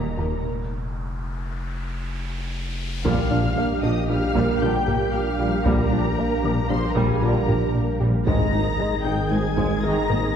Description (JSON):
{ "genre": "cinematic, hybrid orchestral and electronic film score", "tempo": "115 BPM", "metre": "5/4", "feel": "straight", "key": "unclear", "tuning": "A4 = 441 Hz", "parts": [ { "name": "dark symphonic violin section", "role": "melody", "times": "0.0-10.4 s", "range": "Ab5 to Bb6", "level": "-33 LUFS", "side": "left 4 dB", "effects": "none" }, { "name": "warm analog pad", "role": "sustained chords", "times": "0.0-10.4 s", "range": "Eb3 to F5", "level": "-29 LUFS", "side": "right 2 dB", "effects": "chorus" }, { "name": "soft round pluck", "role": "arpeggios", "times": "0.0-10.2 s", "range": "Ab3 to Bb4", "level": "-31 LUFS", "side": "right 2 dB", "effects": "none" }, { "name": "smooth gliding synth bass", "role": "riff", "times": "0.0-10.2 s", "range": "Eb2 to Bb3", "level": "-27 LUFS", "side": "left 2 dB", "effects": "none" }, { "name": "rich symphonic cello section", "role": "bass", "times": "0.0-10.2 s", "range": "Ab2 to Bb2", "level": "-32 LUFS", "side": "right 1 dB", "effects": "none" }, { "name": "saturated sub bass", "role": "bass", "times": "0.0-10.4 s", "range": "Eb1 to Bb1", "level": "-30 LUFS", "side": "left 1 dB", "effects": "none" }, { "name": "riser and impact", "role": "sound effects", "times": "0.1-5.7 s", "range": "none", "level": "-36 LUFS", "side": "equal", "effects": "none" }, { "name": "warm symphonic violin section", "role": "second line", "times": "0.2-10.3 s", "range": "Ab4 to Bb5", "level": "-30 LUFS", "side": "left 2 dB", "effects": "none" }, { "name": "warm studio viola section", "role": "accompaniment", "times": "0.2-10.4 s", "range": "G3 to Ab4", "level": "-29 LUFS", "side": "right 1 dB", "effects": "none" }, { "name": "mellow tuba", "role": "bass", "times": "0.2-10.2 s", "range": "Ab1 to Eb2", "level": "-31 LUFS", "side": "right 2 dB", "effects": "none" }, { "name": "warm symphonic double bass section", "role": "bass", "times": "0.2-10.2 s", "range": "Ab1 to Eb2", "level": "-32 LUFS", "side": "right 2 dB", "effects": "none" }, { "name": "felt-muted upright piano", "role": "texture", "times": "0.2-8.3 s", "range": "D4 to D6", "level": "-36 LUFS", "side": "right 4 dB", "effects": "none" }, { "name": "dark trombone section", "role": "sustained chords", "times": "3.0-10.0 s", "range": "D3 to Ab3", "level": "-33 LUFS", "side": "right 2 dB", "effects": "none" }, { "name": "mellow French horn section", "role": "sustained chords", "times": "3.0-10.0 s", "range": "Bb3 to F4", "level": "-34 LUFS", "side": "equal", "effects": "none" }, { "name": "taiko ensemble", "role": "drums", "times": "3.1-10.3 s", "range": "none", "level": "-29 LUFS", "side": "left 1 dB", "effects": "none" } ], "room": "wet scoring stage reverb, RT60 1.7 s", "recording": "heard from further back in the room", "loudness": "-20 LUFS", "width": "side -8 dB against mid", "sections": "0.0-3.0 A section; 3.0-10.4 B section", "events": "riser 0.1-3.0; break 0.4-3.0; drum fill 2.3-3.0; impact 3.0-5.7", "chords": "0.4 N.C.; 3.0 Bb6; 8.3 Absus2" }